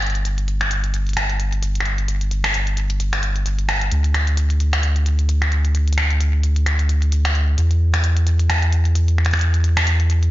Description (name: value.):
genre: IDM.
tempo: 131 BPM.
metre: 4/4.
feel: swing 56% on 16ths.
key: unclear.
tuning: A4 = 440 Hz.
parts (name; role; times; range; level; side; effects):
round analog bass; bass; 0.0-10.3 s; G1 to E2; -17 LUFS; equal; none.
glitchy drum kit; drums; 0.0-10.3 s; finger snaps, hi-hat; -23 LUFS; equal; studio reverb, soft clipping on snare, tape echo.
room: light reverb.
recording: blown-out, overdriven recording, overdrive, nothing above 7.5 kHz.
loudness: -16 LUFS.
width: side -16 dB against mid.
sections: 0.0-10.3 A section.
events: none.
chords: none.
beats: | 0.25 0.71 1.17 1.63 | 2.08 2.54 3.00 3.46 | 3.92 4.37 4.83 5.29 | 5.75 6.21 6.66 7.12 | 7.58 8.04 8.50 8.95 | 9.41 9.87.